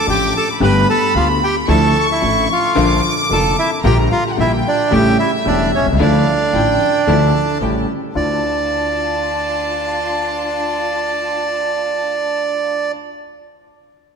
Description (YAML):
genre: tango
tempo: 112 BPM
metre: 4/4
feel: rubato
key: D harmonic minor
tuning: A4 = 440 Hz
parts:
  - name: bandoneon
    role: melody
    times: 0.0-12.9 s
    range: C#4 to B5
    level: -18 LUFS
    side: right 3 dB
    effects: none
  - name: warm studio violin section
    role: second line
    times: 0.0-12.9 s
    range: E5 to D6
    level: -22 LUFS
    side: left 2 dB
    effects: none
  - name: clear concert grand piano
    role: accompaniment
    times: 0.1-12.9 s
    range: E1 to A4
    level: -19 LUFS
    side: left 3 dB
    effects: none
  - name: muted studio string section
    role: stabs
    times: 0.1-12.9 s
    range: F3 to G4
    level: -27 LUFS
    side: right 1 dB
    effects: none
  - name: upright bass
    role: bass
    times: 0.1-8.4 s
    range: E1 to D2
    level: -19 LUFS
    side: right 1 dB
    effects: none
room: wet concert hall reverb, RT60 2.3 s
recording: none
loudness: -14 LUFS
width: side -6 dB against mid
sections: 0.0-8.1 A section; 8.1-12.4 B section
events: none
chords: 0.0 Dm; 0.6 Gadd9; 1.7 Dmadd9; 2.8 Bb; 3.8 Gm7/Bb; 4.9 A7; 6.0 Dmadd9; 7.6 A7; 8.1 Dmadd9